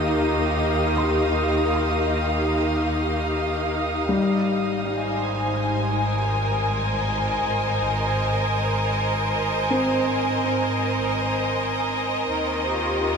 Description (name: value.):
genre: ambient.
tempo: free time.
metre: none.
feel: none.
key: Ab major.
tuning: A4 = 440 Hz.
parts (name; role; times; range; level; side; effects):
rich studio string section; sustained chords; 0.0-13.2 s; Eb3 to Ab5; -22 LUFS; equal; none.
felt-muted upright piano; arpeggios; 0.0-13.2 s; G3 to C6; -29 LUFS; left 1 dB; diffuse ambient delay.
rich chamber double bass section; bass; 0.0-13.2 s; Ab1 to Eb2; -27 LUFS; equal; none.
drifting glass-harmonics texture; texture; 0.0-13.2 s; Eb6; -34 LUFS; right 3 dB; chorus, built-in reverb.
room: wet shimmer reverb, RT60 8.1 s.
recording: cassette tape.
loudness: -20 LUFS.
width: side -6 dB against mid.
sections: 0.0-13.2 A section.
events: fade-out on synth texture 0.0-13.2; filter sweep on string section 0.0-13.2.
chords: 0.0 Eb; 4.2 Abadd9; 12.3 Eb.